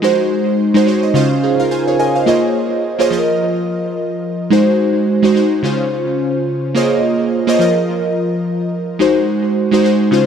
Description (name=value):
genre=afrobeats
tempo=107 BPM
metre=4/4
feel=swing 58% on 16ths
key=unclear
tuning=A4 = 441 Hz
part: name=glassy digital keys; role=solo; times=0.0-10.3 s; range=Db3 to Ab5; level=-13 LUFS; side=right 1 dB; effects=chorus, analog delay
room=light reverb, digital ambience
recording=none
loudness=-13 LUFS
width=side -7 dB against mid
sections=0.0-10.3 A section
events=synth keys fill 0.6-2.3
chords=0.0 Ab7; 1.2 Dbmaj7; 2.3 Bbm11; 3.1 F7sus4; 4.5 Ab7; 5.6 Dbmaj7; 6.8 Bbm11; 7.6 F7sus4; 9.0 Ab7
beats=| 0.03 0.59 1.15 1.71 | 2.27 2.83 3.39 3.96 | 4.52 5.08 5.64 6.20 | 6.76 7.32 7.88 8.44 | 9.00 9.56 10.12